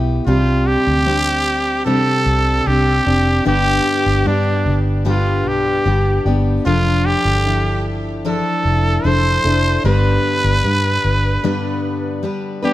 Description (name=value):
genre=acoustic pop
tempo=75 BPM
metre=4/4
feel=straight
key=unclear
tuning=A4 = 441 Hz
part: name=picked steel-string acoustic guitar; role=accompaniment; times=0.0-12.7 s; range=G2 to B4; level=-19 LUFS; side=left 1 dB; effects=none
part: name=vintage muted fingered electric bass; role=bass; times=0.0-11.4 s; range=F1 to G2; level=-18 LUFS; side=equal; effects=none
part: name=growling trumpet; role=melody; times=0.3-12.7 s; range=D4 to C5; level=-19 LUFS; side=right 1 dB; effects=digital delay
room=light reverb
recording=none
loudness=-14 LUFS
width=side -15 dB against mid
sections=0.0-12.7 A section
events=break 11.4-12.7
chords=0.3 Csus2; 3.5 G; 6.7 Dmadd9/F; 9.8 G